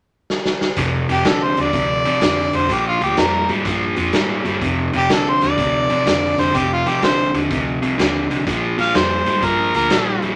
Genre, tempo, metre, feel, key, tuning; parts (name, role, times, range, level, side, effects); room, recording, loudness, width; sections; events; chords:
electric blues shuffle; 125 BPM; 4/4; swing 66% on 8ths; F mixolydian; A4 = 438 Hz
raw garage drum kit; drums; 0.3-10.3 s; hi-hat, kick drum, snare drum; -24 LUFS; equal
overdriven semi-hollow guitar; riff; 0.8-10.4 s; F2 to G3; -22 LUFS; equal
vintage muted fingered electric bass; bass; 0.8-10.4 s; F1 to Ab2; -31 LUFS; equal
clear harmonica; melody; 1.1-10.2 s; F4 to F5; -21 LUFS; equal; overdrive
moderate studio reverb, RT60 0.6 s; -18 LUFS; mono
0.8-10.4 A section
drum fill 0.3-0.8
0.0 N.C.; 0.8 F5; 2.7 Bb7(no3); 4.6 F7(no3); 8.5 Bb5